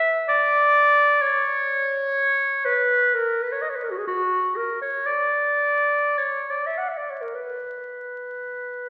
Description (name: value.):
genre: classical, free, expressive piece for unaccompanied clarinet.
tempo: 48-66 BPM.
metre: 3/4.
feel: rubato.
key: B minor.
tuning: A4 = 439 Hz.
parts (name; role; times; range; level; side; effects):
warm clarinet; solo; 0.0-8.9 s; F#4 to F#5; -22 LUFS; equal; none.
room: wet scoring stage reverb, RT60 2.0 s.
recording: very old 78 rpm record, vinyl crackle.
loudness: -22 LUFS.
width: mono.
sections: 0.0-8.9 A section.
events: none.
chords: none.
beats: 0.29 | 1.22 2.17 3.13 | 4.09 5.09 6.19 | 7.34 8.59.